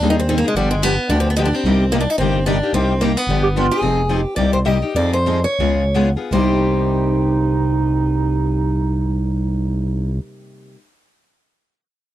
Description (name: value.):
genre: acoustic string swing (jazz manouche).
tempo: 154-221 BPM.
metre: 4/4.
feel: swing 56% on 8ths.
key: C minor.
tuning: A4 = 441 Hz.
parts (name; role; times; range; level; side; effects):
picked steel-string acoustic guitar; melody; 0.0-10.7 s; G3 to Eb5; -21 LUFS; equal; none.
picked steel-string acoustic guitar; accompaniment; 0.0-10.8 s; C3 to Ab4; -23 LUFS; left 7 dB; none.
picked steel-string acoustic guitar; accompaniment; 0.0-10.8 s; C3 to Ab4; -27 LUFS; right 7 dB; none.
growling FM bass; bass; 0.0-10.2 s; F1 to F2; -19 LUFS; equal; none.
breathy clarinet; second line; 3.4-3.8, 6.3-10.2 s; Eb4 to G4; -22 LUFS; right 6 dB; none.
room: little or no reverb.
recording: dry, close 1970s-style studio recording.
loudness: -16 LUFS.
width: side -13 dB against mid.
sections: 0.0-3.8 A section; 3.8-6.3 B section; 6.3-9.4 C section.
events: slowing down 3.8-6.3.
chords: 0.0 Abmaj7; 0.6 G7; 1.6 Cm9; 3.3 G7; 3.8 Fm7; 4.4 Cm7; 5.0 Fm7; 5.6 Db7; 6.3 Cm7.